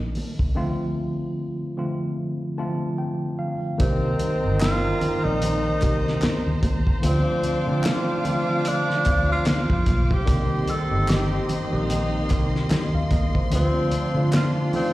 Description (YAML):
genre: lush 1970s-style soul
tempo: 74 BPM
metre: 4/4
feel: swing 58% on 16ths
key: C dorian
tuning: A4 = 435 Hz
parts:
  - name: breathy tenor saxophone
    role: melody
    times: 0.0-14.9 s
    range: C4 to A4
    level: -27 LUFS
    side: equal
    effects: slapback echo
  - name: tine electric piano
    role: accompaniment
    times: 0.0-14.9 s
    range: D3 to A5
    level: -26 LUFS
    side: left 1 dB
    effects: medium stereo tremolo
  - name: vintage muted fingered electric bass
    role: bass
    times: 0.0-14.8 s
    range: G1 to D3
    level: -24 LUFS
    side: equal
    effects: none
  - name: congas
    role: percussion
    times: 0.0-14.9 s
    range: none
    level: -34 LUFS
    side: right 2 dB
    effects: none
  - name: cloth-damped thuddy drum kit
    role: drums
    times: 0.1-14.9 s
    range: hi-hat, kick drum, snare drum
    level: -24 LUFS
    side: equal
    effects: none
  - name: clear studio string section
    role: sustained chords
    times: 3.8-14.9 s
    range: Bb3 to D6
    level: -34 LUFS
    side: equal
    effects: none
  - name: clear trombone section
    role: stabs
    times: 3.8-14.9 s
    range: Bb3 to G4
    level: -30 LUFS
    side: right 1 dB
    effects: slapback echo
  - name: group handclap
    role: percussion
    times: 4.6-14.5 s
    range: none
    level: -37 LUFS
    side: left 1 dB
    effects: none
room: light reverb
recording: live gig heard through the venue's PA, recital hall reverb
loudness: -20 LUFS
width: side -16 dB against mid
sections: 0.0-3.8 A section; 3.8-14.9 B section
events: tine electric piano fill 2.2-3.8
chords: 0.0 Cm7; 0.6 Dm7; 3.8 Cm7; 7.0 Dm7; 10.3 Cm7; 13.5 Dm7